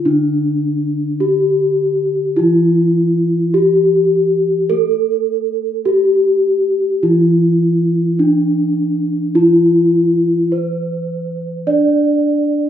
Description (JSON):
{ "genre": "gamelan", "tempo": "52 BPM", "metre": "4/4", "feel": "straight", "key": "D slendro", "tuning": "A4 = 440 Hz", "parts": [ { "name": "gamelan-type bronze metallophone", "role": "melody", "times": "0.0-12.7 s", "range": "D4 to D5", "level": "-14 LUFS", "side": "equal", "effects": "none" }, { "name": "gamelan-type bronze metallophone", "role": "accompaniment", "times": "0.0-12.7 s", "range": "D3 to D4", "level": "-19 LUFS", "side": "right 1 dB", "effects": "none" } ], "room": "wet large studio reverb, RT60 0.8 s", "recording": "band playing live in one room", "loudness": "-12 LUFS", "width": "side -10 dB against mid", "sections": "0.0-12.7 A section", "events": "none", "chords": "none" }